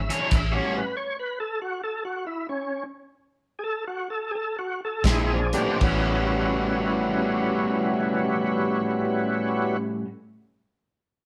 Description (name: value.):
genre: electric blues shuffle.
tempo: 76-95 BPM.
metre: 4/4.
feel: swing 65% on 8ths.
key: A mixolydian.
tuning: A4 = 440 Hz.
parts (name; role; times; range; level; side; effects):
tonewheel organ; accompaniment; 0.0-9.8 s; A2 to E5; -29 LUFS; equal; slow rotary speaker, overdrive, chorus vibrato.
vintage muted fingered electric bass; bass; 0.0-0.6, 5.0-10.0 s; A1 to Bb1; -31 LUFS; equal; none.
cranked stack guitar; riff; 0.1-0.8, 5.0-10.1 s; A2 to C#5; -29 LUFS; equal; overdrive.
warm soul drum kit; drums; 0.1-0.5, 5.0-6.0 s; crash cymbal, hi-hat, kick drum, snare drum; -28 LUFS; equal; none.
room: moderate stone room reverb, RT60 1.0 s.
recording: band playing live in one room.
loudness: -26 LUFS.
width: mono.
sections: 0.0-5.8 A section; 5.8-9.0 B section.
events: slowing down 0.3-5.8; stop 0.3-5.0.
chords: 0.3 A6; 5.0 Bb9; 5.8 A13.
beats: | 0.32 0.95 1.59 2.25 | 2.91 3.60 4.31 5.04 | 5.81 6.60 7.39 8.18.